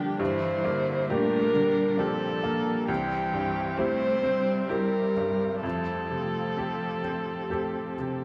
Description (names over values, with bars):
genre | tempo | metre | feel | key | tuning
neoclassical piano and strings | 66 BPM | 3/4 | rubato | F major | A4 = 440 Hz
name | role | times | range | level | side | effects
muted violin | melody | 0.0-8.2 s | G4 to C5 | -31 LUFS | equal | none
muted cello | second line | 0.0-8.2 s | D3 to A3 | -36 LUFS | equal | none
bright upright piano | accompaniment | 0.0-8.2 s | C2 to A4 | -34 LUFS | equal | none
muted viola | accompaniment | 0.0-8.2 s | Bb3 to E4 | -37 LUFS | equal | none
warbly tape-like pad | sustained chords | 0.0-8.2 s | G3 to F5 | -40 LUFS | equal | chorus, built-in reverb
room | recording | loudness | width
moderate large studio reverb, RT60 0.8 s | band playing live in one room | -27 LUFS | mono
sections
0.0-8.2 A section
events
none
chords
0.0 Gm; 2.9 C; 5.6 Fadd9